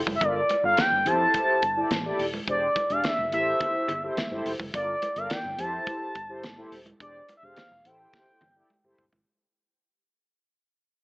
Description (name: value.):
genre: early-eighties boogie funk.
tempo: 106 BPM.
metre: 4/4.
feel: straight.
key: unclear.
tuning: A4 = 439 Hz.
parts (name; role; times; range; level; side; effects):
vintage muted fingered electric bass; bass; 0.0-9.2 s; Eb1 to F2; -38 LUFS; equal; none.
damped 70s drum kit; drums; 0.1-9.3 s; hi-hat, kick drum, snare drum, toms; -32 LUFS; equal; gated reverb.
congas; percussion; 0.1-9.3 s; none; -38 LUFS; right 1 dB; none.
expressive synth lead; melody; 0.2-9.0 s; D5 to A5; -25 LUFS; equal; chorus, slapback echo.
mellow synth brass; accompaniment; 0.2-9.0 s; D4 to F5; -30 LUFS; equal; chorus.
room: light reverb, small room ambience.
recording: AM radio sound.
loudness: -23 LUFS.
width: side -25 dB against mid.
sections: 0.2-9.3 A section.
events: fade-out 0.2-9.3; drum fill 8.1-9.3.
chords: 0.2 Gm9; 1.1 Fmaj7; 2.5 E7alt; 3.3 Am7; 4.7 Gm9; 5.6 Fmaj7; 7.0 E7alt; 7.9 Am7.